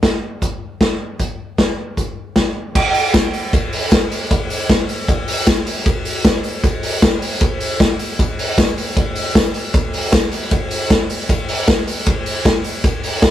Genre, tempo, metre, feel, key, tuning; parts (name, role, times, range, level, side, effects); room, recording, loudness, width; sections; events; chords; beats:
indie pop; 154 BPM; 4/4; straight
vintage drum kit; drums; 0.0-13.3 s; crash cymbal, hi-hat, kick drum, ride cymbal, snare drum; -15 LUFS; equal
tambourine; percussion; 2.9-13.3 s; -35 LUFS; left 3 dB
moderate small room reverb, RT60 0.5 s; rough rehearsal-room recording; -15 LUFS; side -12 dB against mid
0.0-2.8 A section; 2.8-13.3 B section
0.03 0.42 0.81 | 1.20 1.59 1.98 2.37 | 2.75 3.14 3.53 3.92 | 4.31 4.70 5.08 5.47 | 5.86 6.25 6.64 7.03 | 7.42 7.80 8.19 8.58 | 8.97 9.36 9.74 10.13 | 10.52 10.90 11.29 11.68 | 12.07 12.45 12.84 13.23